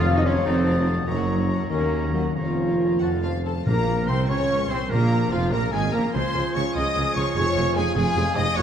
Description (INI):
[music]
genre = classical, dramatic, fast romantic movement for symphony orchestra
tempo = 97 BPM (dotted quarters)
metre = 6/8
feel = rubato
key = Bb minor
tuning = A4 = 438 Hz
[part]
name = warm symphonic violin section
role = melody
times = 0.0-8.6 s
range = Db5 to Eb6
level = -32 LUFS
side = left 5 dB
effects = none
[part]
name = clear oboe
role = second line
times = 0.0-8.6 s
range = F4 to Bb5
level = -36 LUFS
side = right 1 dB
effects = none
[part]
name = dark symphonic violin section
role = second line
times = 0.0-8.6 s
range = C4 to Eb5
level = -34 LUFS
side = left 3 dB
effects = none
[part]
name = mellow concert flute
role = second line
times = 0.0-8.6 s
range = F5 to Eb6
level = -33 LUFS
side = left 2 dB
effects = none
[part]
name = mellow bassoon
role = accompaniment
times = 0.0-8.6 s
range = F3 to Db4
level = -34 LUFS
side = right 2 dB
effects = none
[part]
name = warm symphonic viola section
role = accompaniment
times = 0.0-8.6 s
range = F3 to Ab4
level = -33 LUFS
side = right 1 dB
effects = none
[part]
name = mellow French horn section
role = sustained chords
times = 0.0-8.6 s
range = F3 to F5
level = -28 LUFS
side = left 1 dB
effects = none
[part]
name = concert harp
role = arpeggios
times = 0.0-8.6 s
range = F2 to Gb5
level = -31 LUFS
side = left 7 dB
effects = none
[part]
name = mellow tuba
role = bass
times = 0.0-8.6 s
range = F1 to Eb2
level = -29 LUFS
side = right 2 dB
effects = none
[part]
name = rich symphonic cello section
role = bass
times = 0.0-8.6 s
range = F2 to F4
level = -29 LUFS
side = right 2 dB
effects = none
[part]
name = rich symphonic double bass section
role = bass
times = 0.0-8.6 s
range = F1 to Gb2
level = -27 LUFS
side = right 2 dB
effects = none
[part]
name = bright clarinet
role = second line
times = 0.1-8.6 s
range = Bb3 to Db5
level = -36 LUFS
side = left 2 dB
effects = none
[part]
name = mellow trumpet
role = stabs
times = 3.0-8.6 s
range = F4 to Eb5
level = -31 LUFS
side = right 2 dB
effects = none
[part]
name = timpani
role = percussion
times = 3.7-4.2 s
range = Bb2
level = -28 LUFS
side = equal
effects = none
[sound]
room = wet scoring stage reverb, RT60 1.6 s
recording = dark, warm production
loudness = -20 LUFS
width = side -8 dB against mid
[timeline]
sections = 0.0-3.7 A section; 3.7-8.6 B section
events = none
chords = 0.0 F7b9; 1.1 Gb; 1.7 Ebm7; 2.4 Bbm/F; 3.0 F; 3.7 Bbm; 6.1 Db; 7.4 Db/F